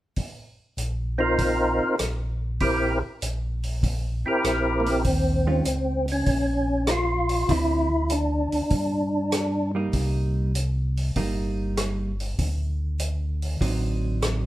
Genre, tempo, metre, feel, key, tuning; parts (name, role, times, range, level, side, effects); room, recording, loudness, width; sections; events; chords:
soul jazz organ trio; 98 BPM; 4/4; swing 69% on 8ths; A4 = 440 Hz
vintage drum kit; drums; 0.2-14.4 s; hi-hat, kick drum, rim click; -29 LUFS; equal
mellow tonewheel organ; bass; 0.8-14.5 s; G1 to G2; -26 LUFS; equal; overdrive, chorus vibrato, slow rotary speaker
percussive tonewheel organ; melody; 1.2-9.7 s; Bb3 to Bb4; -23 LUFS; equal; slow rotary speaker, overdrive, chorus vibrato
hollow-body jazz guitar; accompaniment; 5.5-14.5 s; D3 to F4; -29 LUFS; right 3 dB
light reverb; band playing live in one room; -22 LUFS; side -15 dB against mid
0.2-5.0 A section; 5.0-14.5 B section
0.2 Bbsus24; 5.0 Eb7sus2; 7.5 Dm9; 8.7 G5; 9.9 Cm7; 12.4 D7b9